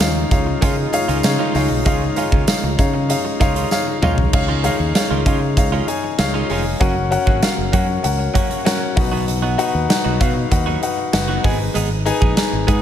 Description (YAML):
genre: 1980s-style pop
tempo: 97 BPM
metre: 4/4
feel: straight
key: Db mixolydian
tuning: A4 = 440 Hz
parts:
  - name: clear baby grand piano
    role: accompaniment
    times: 0.0-12.8 s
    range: Ab2 to Ab5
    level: -20 LUFS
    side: left 4 dB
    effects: none
  - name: lush unison pad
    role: sustained chords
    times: 0.0-4.3 s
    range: Db3 to F4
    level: -27 LUFS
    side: right 1 dB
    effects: chorus
  - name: direct-recorded clean electric guitar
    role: riff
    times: 0.0-12.8 s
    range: Eb3 to Ab4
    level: -26 LUFS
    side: right 6 dB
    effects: lush chorus, digital delay
  - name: fingered electric bass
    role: bass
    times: 0.0-12.8 s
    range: F1 to Db3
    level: -21 LUFS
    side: equal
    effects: none
  - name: huge arena drum kit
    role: drums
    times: 0.0-12.8 s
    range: crash cymbal, hi-hat, kick drum, snare drum, toms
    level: -19 LUFS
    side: right 1 dB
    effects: none
  - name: tambourine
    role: percussion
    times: 0.0-4.2 s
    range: none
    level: -35 LUFS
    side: right 10 dB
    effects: none
room: light reverb, studio reverb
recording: none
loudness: -15 LUFS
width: side -10 dB against mid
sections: 0.0-4.3 A section; 4.3-12.8 B section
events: drum fill 3.7-4.3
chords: 0.0 Dbadd9; 6.8 Gb; 9.0 Cb; 11.4 Abm